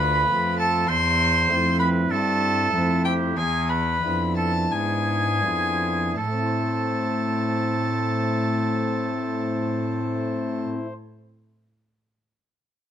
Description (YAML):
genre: classical, baroque-style sonata movement with continuo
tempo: 40-52 BPM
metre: 4/4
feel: straight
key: A minor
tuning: A4 = 439 Hz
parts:
  - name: dark violin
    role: melody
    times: 0.0-10.7 s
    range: G5 to C6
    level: -27 LUFS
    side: left 3 dB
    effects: none
  - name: warm oboe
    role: second line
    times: 0.0-10.7 s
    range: G4 to C5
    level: -27 LUFS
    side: right 6 dB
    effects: none
  - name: chamber organ, principal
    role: accompaniment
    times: 0.0-10.9 s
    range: D2 to C5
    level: -26 LUFS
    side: left 2 dB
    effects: none
  - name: rich cello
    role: bass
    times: 0.0-10.7 s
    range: D2 to A2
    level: -27 LUFS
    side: right 1 dB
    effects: none
room: light reverb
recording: close, detailed microphones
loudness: -21 LUFS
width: side -9 dB against mid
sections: 0.0-6.2 A section; 6.2-12.0 B section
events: slowing down 0.0-6.2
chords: 0.0 Dm6; 0.9 Am/E; 3.4 E7; 6.2 Am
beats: | 0.89 2.11 3.38 4.72 | 6.18 7.64 9.10 10.56